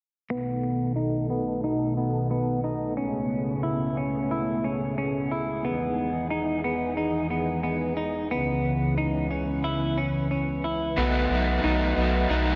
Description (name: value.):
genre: dream pop.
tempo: 90 BPM.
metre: 4/4.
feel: straight.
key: unclear.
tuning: A4 = 440 Hz.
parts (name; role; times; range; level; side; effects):
string machine, cellos; sustained chords; 0.3-12.6 s; C#2 to F#5; -30 LUFS; equal; ensemble chorus, low-pass filter.
clean electric guitar; arpeggios; 0.3-12.6 s; B3 to E4; -30 LUFS; equal; subtle chorus, low-pass filter, tape echo.
crunchy overdriven guitar; accompaniment; 11.0-12.6 s; B2 to D#4; -29 LUFS; equal; tremolo, lush chorus.
round analog bass; bass; 11.0-12.6 s; B1; -28 LUFS; equal; none.
room: moderate plate reverb, RT60 3.1 s.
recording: nothing above 7.5 kHz.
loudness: -27 LUFS.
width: mono.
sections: 0.3-11.0 A section; 11.0-12.6 B section.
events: filter sweep 0.3-11.0.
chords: 0.3 B7; 3.0 Amaj7/C#; 5.6 Emaj7; 8.3 C#m7; 11.0 B7.